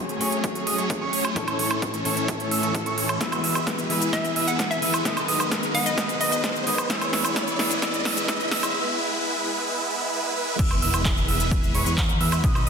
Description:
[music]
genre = EDM, festival progressive house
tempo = 130 BPM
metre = 4/4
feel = straight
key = E major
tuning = A4 = 437 Hz
[part]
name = direct-recorded clean electric guitar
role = accompaniment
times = 0.0-8.7 s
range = A2 to B4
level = -30 LUFS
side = left 4 dB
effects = wide subtle chorus, sidechain pumping, tape echo
[part]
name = clear studio string section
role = sustained chords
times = 0.0-12.7 s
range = D#3 to B5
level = -34 LUFS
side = equal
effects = sidechain pumping
[part]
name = dark concert grand piano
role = arpeggios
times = 0.0-12.7 s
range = C#6 to E6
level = -31 LUFS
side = right 5 dB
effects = sidechain pumping, low-pass filter, tape echo
[part]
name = supersaw chords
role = riff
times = 0.0-12.7 s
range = E3 to E5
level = -28 LUFS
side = right 1 dB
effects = phaser, cassette tape, sidechain pumping, low-pass filter, tape echo
[part]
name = riser and impact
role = sound effects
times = 0.1-12.4 s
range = none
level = -33 LUFS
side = equal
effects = none
[part]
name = big-room dance drum kit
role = drums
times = 0.1-12.7 s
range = crash cymbal, handclaps, hi-hat, shaker, snare drum, woodblock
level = -26 LUFS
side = right 1 dB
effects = overdrive
[part]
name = electronic kick drum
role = drums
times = 0.4-12.5 s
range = none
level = -27 LUFS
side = equal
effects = overdrive, high-pass filter on kick, high-pass filter on room
[part]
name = hollow square pluck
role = melody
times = 4.1-6.4 s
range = D#5 to F#5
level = -29 LUFS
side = left 1 dB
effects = chorus, tape echo
[part]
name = fat analog bass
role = bass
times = 10.6-12.7 s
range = E1 to E2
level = -26 LUFS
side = equal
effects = tube saturation, sidechain pumping
[sound]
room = wet recital hall reverb, RT60 1.4 s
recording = dense, heavily limited modern master, high-pass filter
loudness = -21 LUFS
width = side -6 dB against mid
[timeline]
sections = 0.0-10.6 A section; 10.6-12.7 B section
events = build-up 0.0-10.6; filter sweep on supersaw synth 0.0-10.6; filter sweep on grand piano 0.0-10.6; riser 0.1-8.7; drum fill 3.2-8.7; drop 10.6-12.7; impact 10.6-12.4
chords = 0.0 F#madd9; 1.4 A; 3.2 E; 5.1 B; 6.9 F#madd9; 8.7 E/G#; 10.6 E

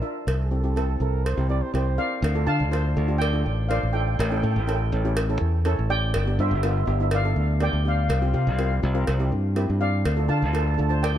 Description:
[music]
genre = calypso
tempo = 123 BPM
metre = 4/4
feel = straight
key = unclear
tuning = A4 = 440 Hz
[part]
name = steel pan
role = melody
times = 0.0-11.2 s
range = C5 to A5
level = -29 LUFS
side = equal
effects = dub echo
[part]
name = steel pan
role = accompaniment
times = 0.0-11.2 s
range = B3 to C5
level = -30 LUFS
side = right 1 dB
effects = none
[part]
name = modern bright fingered electric bass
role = bass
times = 0.3-11.2 s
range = G1 to D3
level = -22 LUFS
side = equal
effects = none
[part]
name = cowbell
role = percussion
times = 0.3-11.1 s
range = none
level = -33 LUFS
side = equal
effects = none
[part]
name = breathy trumpet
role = second line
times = 0.4-2.2 s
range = Ab4 to D5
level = -35 LUFS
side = right 4 dB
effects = dub echo
[sound]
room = little or no reverb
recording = echo-heavy mix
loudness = -21 LUFS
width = side -11 dB against mid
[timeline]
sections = 0.0-2.2 A section; 2.2-11.2 B section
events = none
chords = 0.3 C; 2.2 Dm; 4.2 A7; 6.1 G7; 8.1 Csus4; 9.1 Cadd9; 10.0 Dm

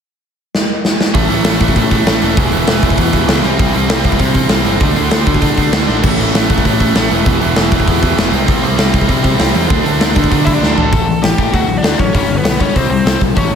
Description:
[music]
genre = punk rock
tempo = 196 BPM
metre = 4/4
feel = straight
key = unclear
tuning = A4 = 444 Hz
[part]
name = big rock drum kit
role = drums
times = 0.5-13.4 s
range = crash cymbal, hi-hat, kick drum, snare drum, toms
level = -14 LUFS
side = equal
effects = none
[part]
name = biting overdriven guitar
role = riff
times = 1.1-13.6 s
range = G2 to F#4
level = -18 LUFS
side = left 10 dB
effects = slapback echo
[part]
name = biting overdriven guitar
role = riff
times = 1.1-10.9 s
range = E2 to D4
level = -17 LUFS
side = right 10 dB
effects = slapback echo
[part]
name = growling picked electric bass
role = bass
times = 1.1-13.6 s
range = E1 to D3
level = -18 LUFS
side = equal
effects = overdrive
[part]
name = biting lead guitar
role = melody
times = 10.5-13.5 s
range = B3 to A5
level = -18 LUFS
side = equal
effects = overdrive, slapback echo, ping-pong delay
[sound]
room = moderate lush hall reverb, RT60 1.7 s, small room ambience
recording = big arena sound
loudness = -10 LUFS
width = side -7 dB against mid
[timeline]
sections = 0.0-1.1 A section; 1.1-10.9 B section; 10.9-13.6 C section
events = drum fill 0.5-1.1, 5.9, 10.6-10.9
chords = 0.0 N.C.; 1.1 A; 2.4 E; 3.4 C; 4.8 D; 6.0 A; 7.3 E; 8.3 C; 9.7 D; 10.9 A5; 11.5 D; 12.1 G; 12.8 C5

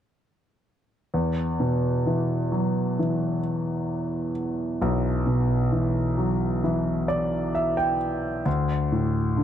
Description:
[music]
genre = pop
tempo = 66 BPM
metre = 4/4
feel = straight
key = E minor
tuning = A4 = 439 Hz
[part]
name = clear grand piano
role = accompaniment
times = 1.1-9.4 s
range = B1 to G5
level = -22 LUFS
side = equal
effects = none
[sound]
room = moderate plate reverb, RT60 2.7 s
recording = dark, warm production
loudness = -23 LUFS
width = side -10 dB against mid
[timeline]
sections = 1.1-9.4 A section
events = grand piano fill 6.6-8.5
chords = 1.1 Esus2; 8.5 D5

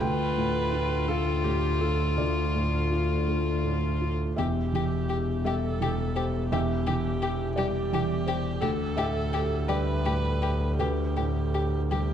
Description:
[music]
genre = neoclassical piano and strings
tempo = 56 BPM (dotted quarters)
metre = 6/8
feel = rubato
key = unclear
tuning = A4 = 440 Hz
[part]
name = warm violin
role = melody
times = 0.0-12.0 s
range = F4 to G4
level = -32 LUFS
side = left 6 dB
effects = none
[part]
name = felt-muted upright piano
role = accompaniment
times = 0.0-12.1 s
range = D2 to G5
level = -30 LUFS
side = right 2 dB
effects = none
[part]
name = warm viola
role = accompaniment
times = 0.0-12.1 s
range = F4 to B4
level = -34 LUFS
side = right 2 dB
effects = none
[part]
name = rich double bass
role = bass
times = 0.0-12.1 s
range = E1 to D2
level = -28 LUFS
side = equal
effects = none
[sound]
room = moderate recital hall reverb, RT60 1.4 s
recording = dark, warm production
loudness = -25 LUFS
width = side -9 dB against mid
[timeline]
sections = 0.0-12.1 A section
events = none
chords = 0.0 Dm; 4.4 Emadd11; 8.6 Gadd9/D

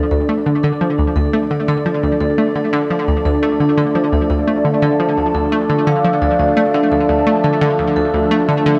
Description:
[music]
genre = ambient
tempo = 86 BPM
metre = 4/4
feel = straight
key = D minor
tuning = A4 = 440 Hz
[part]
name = phased analog pad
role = sustained chords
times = 0.0-8.8 s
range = F3 to E5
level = -23 LUFS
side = equal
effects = phaser, chorus
[part]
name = vibraphone with soft mallets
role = arpeggios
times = 0.0-8.8 s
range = D4 to F5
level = -19 LUFS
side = equal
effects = tape echo
[part]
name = analog pluck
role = riff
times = 0.0-8.7 s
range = D2 to A3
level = -20 LUFS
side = equal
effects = chorus, tape echo
[sound]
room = wet plate reverb, RT60 2.4 s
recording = dreamy mix soaked in reverb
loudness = -16 LUFS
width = mono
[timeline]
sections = 0.0-8.8 A section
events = fade-in on analog synth pad 0.0-8.8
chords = 0.0 Dm

